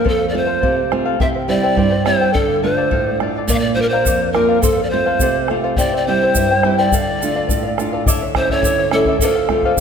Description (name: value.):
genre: andean folk, Andean ensemble.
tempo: 105 BPM.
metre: 2/4.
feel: straight.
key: D minor.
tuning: A4 = 439 Hz.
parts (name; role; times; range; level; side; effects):
breathy pan flute; melody; 0.0-9.7 s; A4 to F5; -18 LUFS; equal; none.
charango; accompaniment; 0.0-9.8 s; E4 to G5; -21 LUFS; left 5 dB; none.
nylon-string guitar; accompaniment; 0.0-9.8 s; F2 to F4; -20 LUFS; right 5 dB; none.
bombo; percussion; 0.1-9.8 s; none; -22 LUFS; left 2 dB; none.
egg shaker; percussion; 3.5-9.3 s; none; -24 LUFS; right 6 dB; none.
room: wet scoring stage reverb, RT60 1.9 s.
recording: none.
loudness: -14 LUFS.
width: side -7 dB against mid.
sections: 0.0-8.1 A section; 8.1-9.8 B section.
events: none.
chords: 0.0 F; 1.2 C; 2.3 Dm; 3.5 Bb; 4.6 F; 5.8 C; 6.9 Dm; 8.1 A/D; 9.2 F/D.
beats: | 0.05 0.62 | 1.20 1.77 | 2.34 2.92 | 3.49 4.06 | 4.64 5.21 | 5.78 6.35 | 6.92 7.50 | 8.06 8.63 | 9.21 9.77.